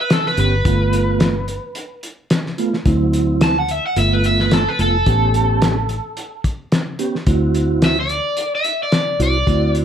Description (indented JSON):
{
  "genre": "straight-eighth soul blues",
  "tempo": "109 BPM",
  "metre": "4/4",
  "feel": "swing 56% on 16ths",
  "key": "D mixolydian",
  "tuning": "A4 = 438 Hz",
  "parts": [
    { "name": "overdriven semi-hollow guitar", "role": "melody", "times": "0.0-9.7 s", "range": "A4 to A5", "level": "-19 LUFS", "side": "equal", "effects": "slapback echo" },
    { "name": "cloth-damped thuddy drum kit", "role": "drums", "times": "0.1-9.8 s", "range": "hi-hat, kick drum, snare drum", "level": "-19 LUFS", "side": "left 1 dB", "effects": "none" },
    { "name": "mellow tonewheel organ", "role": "accompaniment", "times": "0.4-9.8 s", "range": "F#3 to G4", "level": "-20 LUFS", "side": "right 4 dB", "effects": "slow rotary speaker" },
    { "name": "vintage muted fingered electric bass", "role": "bass", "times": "0.4-9.8 s", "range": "F1 to D2", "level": "-18 LUFS", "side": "left 1 dB", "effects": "none" }
  ],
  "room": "moderate club reverb, RT60 0.8 s",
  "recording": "none",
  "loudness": "-15 LUFS",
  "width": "side -9 dB against mid",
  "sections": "0.0-7.3 A section; 7.3-9.8 B section",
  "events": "overdriven electric guitar solo 0.0-7.3",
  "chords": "0.0 A9; 0.7 G9; 2.9 D9; 4.0 G9; 5.1 A9; 7.3 D9",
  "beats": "0.10 | 0.66 1.21 1.76 2.31 | 2.86 3.41 3.96 4.51 | 5.06 5.62 6.17 6.72 | 7.27 7.82 8.37 8.92 | 9.47"
}